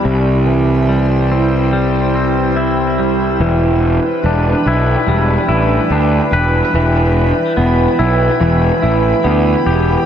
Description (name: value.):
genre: post-rock.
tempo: 72 BPM.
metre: 4/4.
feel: straight.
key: unclear.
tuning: A4 = 442 Hz.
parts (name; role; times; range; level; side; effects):
glassy FM pad; sustained chords; 0.0-10.1 s; D4 to C6; -20 LUFS; right 2 dB; ensemble chorus, built-in reverb.
twangy electric guitar; arpeggios; 0.0-10.1 s; C3 to B4; -15 LUFS; left 1 dB; tape echo.
fuzz picked electric bass; bass; 0.0-10.0 s; E1 to D2; -15 LUFS; right 1 dB; overdrive.
room: wet huge ambient reverb, RT60 7.8 s.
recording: dreamy mix soaked in reverb.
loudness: -11 LUFS.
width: side -9 dB against mid.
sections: 0.0-3.4 A section; 3.4-10.1 B section.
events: build-up 3.4-10.1.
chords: 0.1 C; 3.4 G/E.